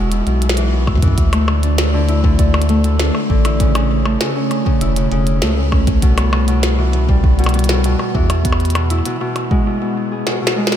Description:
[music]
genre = IDM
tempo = 99 BPM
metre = 4/4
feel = straight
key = unclear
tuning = A4 = 439 Hz
[part]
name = Celtic harp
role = arpeggios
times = 0.0-10.8 s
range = B2 to G#4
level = -18 LUFS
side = left 1 dB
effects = analog delay
[part]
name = round analog bass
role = bass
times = 0.0-9.0 s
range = E1 to F#2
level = -16 LUFS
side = equal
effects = none
[part]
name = glitchy drum kit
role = drums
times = 0.1-10.8 s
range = hi-hat, percussion blips, snare drum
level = -22 LUFS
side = equal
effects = ping-pong delay
[part]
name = electronic kick drum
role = drums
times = 0.9-9.6 s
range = none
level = -16 LUFS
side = equal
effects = none
[sound]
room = moderate huge ambient reverb, RT60 7.8 s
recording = dreamy mix soaked in reverb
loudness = -13 LUFS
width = side -10 dB against mid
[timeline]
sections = 0.0-10.8 A section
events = drum fill 10.3-10.8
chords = 0.0 E; 1.2 Dsus2; 3.6 A; 6.0 Cmaj7; 8.4 E

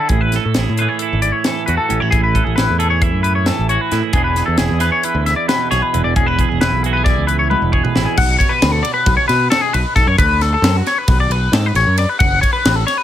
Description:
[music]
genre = math rock and midwest emo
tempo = 268 BPM (eighths)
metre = 9/8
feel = straight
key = unclear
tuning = A4 = 443 Hz
[part]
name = twangy electric guitar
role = accompaniment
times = 0.0-10.2 s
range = E2 to A4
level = -22 LUFS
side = right 12 dB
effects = none
[part]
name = twangy electric guitar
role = arpeggios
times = 0.0-13.0 s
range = F#4 to F#5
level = -17 LUFS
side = left 4 dB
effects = analog chorus
[part]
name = modern bright picked electric bass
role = bass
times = 0.1-12.8 s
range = E1 to B2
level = -18 LUFS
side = equal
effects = none
[part]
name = crisp fusion drum kit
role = drums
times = 0.1-13.0 s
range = crash cymbal, hi-hat, kick drum, ride cymbal, snare drum, toms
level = -18 LUFS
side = equal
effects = none
[sound]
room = light reverb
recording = none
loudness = -13 LUFS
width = side -11 dB against mid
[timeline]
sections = 0.0-8.2 A section; 8.2-13.0 B section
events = drum fill 7.5-8.2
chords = 0.1 Amaj9; 4.1 E7; 8.2 Bm9; 12.2 F#m

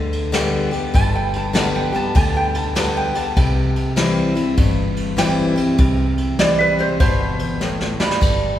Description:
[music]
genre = honky-tonk and classic country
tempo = 99 BPM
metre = 4/4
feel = swing 64% on 8ths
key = unclear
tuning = A4 = 442 Hz
[part]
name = picked steel-string acoustic guitar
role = accompaniment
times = 0.0-8.6 s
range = G2 to G4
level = -20 LUFS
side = left 2 dB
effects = none
[part]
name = vintage muted fingered electric bass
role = bass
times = 0.0-8.6 s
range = G1 to D2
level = -23 LUFS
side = equal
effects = none
[part]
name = vintage brush drum kit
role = drums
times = 0.1-8.4 s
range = crash cymbal, kick drum, ride cymbal, snare drum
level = -21 LUFS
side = equal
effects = none
[part]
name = lap resonator guitar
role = melody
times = 1.0-8.6 s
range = G3 to A5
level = -22 LUFS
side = right 2 dB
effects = none
[sound]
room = wet church reverb, RT60 3.5 s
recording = recorded in a church or concert hall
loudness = -16 LUFS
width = side -12 dB against mid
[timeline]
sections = 0.0-8.2 A section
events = resonator guitar played with a steel bar solo 0.0-8.2; drum fill 7.6-8.2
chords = 0.0 G; 3.4 C

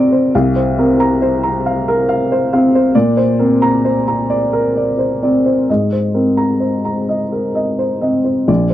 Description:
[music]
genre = neoclassical minimalist piano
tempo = 42-46 BPM (dotted quarters)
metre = 6/8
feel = rubato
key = unclear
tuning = A4 = 439 Hz
[part]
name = dark upright piano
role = solo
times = 0.0-8.7 s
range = Bb1 to D7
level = -12 LUFS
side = equal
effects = none
[sound]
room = light reverb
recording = dry, close 1970s-style studio recording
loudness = -12 LUFS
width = side -13 dB against mid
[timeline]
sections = 0.0-8.5 A section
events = none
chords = 0.3 Fsus4/C; 2.9 Bbadd9; 5.7 Abadd9

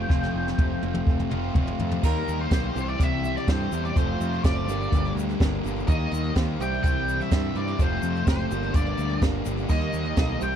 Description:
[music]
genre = classic rock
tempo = 125 BPM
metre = 4/4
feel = straight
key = unclear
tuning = A4 = 441 Hz
[part]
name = octave-fuzz lead guitar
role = melody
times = 0.0-10.6 s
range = Bb4 to G5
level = -31 LUFS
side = equal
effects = distortion, slapback echo
[part]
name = string machine, cellos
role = sustained chords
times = 0.0-10.6 s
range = G3 to F5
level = -40 LUFS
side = equal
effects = none
[part]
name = raw garage guitar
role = riff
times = 0.0-10.6 s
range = F2 to G4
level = -33 LUFS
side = right 15 dB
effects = overdrive, spring reverb
[part]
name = sludgy distorted guitar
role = riff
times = 0.0-10.6 s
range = F2 to G4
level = -31 LUFS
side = left 16 dB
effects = overdrive
[part]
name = growling picked electric bass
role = bass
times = 0.0-10.6 s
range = F1 to G2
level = -29 LUFS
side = equal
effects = overdrive
[part]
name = jazz brush drum kit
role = drums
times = 0.1-10.5 s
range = crash cymbal, hi-hat, kick drum, snare drum, toms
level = -23 LUFS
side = equal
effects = none
[part]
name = dark grand piano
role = accompaniment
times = 2.0-10.6 s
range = Bb3 to C5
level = -37 LUFS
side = right 16 dB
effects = none
[part]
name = egg shaker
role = percussion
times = 2.0-10.6 s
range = none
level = -49 LUFS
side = left 27 dB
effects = none
[sound]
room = little or no reverb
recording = dry, close 1970s-style studio recording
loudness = -22 LUFS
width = side -9 dB against mid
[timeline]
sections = 0.0-2.0 A section; 2.0-10.6 B section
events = drum fill 0.1-2.0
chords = 0.0 Fadd9; 2.0 Eb; 2.8 C; 4.0 F; 4.7 Gm; 5.9 Eb; 6.6 C; 7.8 F; 8.5 Gm; 9.7 Eb

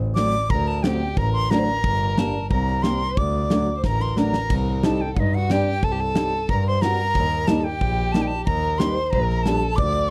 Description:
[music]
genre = klezmer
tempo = 90 BPM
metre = 2/4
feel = straight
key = unclear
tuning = A4 = 440 Hz
[part]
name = rich double bass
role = bass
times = 0.0-10.1 s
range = G1 to G2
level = -26 LUFS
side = equal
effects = none
[part]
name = bright silver concert flute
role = melody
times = 0.1-10.1 s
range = Eb5 to D6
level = -28 LUFS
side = equal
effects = none
[part]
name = dark violin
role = second line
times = 0.2-10.1 s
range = Eb4 to D5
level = -31 LUFS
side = equal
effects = none
[part]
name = nylon-string guitar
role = accompaniment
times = 0.2-9.6 s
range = F#3 to F#4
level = -26 LUFS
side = equal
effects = none
[part]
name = big rock drum kit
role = drums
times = 0.2-9.9 s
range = crash cymbal, kick drum, snare drum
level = -26 LUFS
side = equal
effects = none
[sound]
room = little or no reverb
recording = dry, close 1970s-style studio recording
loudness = -22 LUFS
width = mono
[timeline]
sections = 0.0-4.5 A section; 4.5-10.1 A section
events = drum fill 3.8-4.5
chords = 0.0 D; 1.8 Gm; 3.2 D; 4.5 Cm; 7.2 Eb

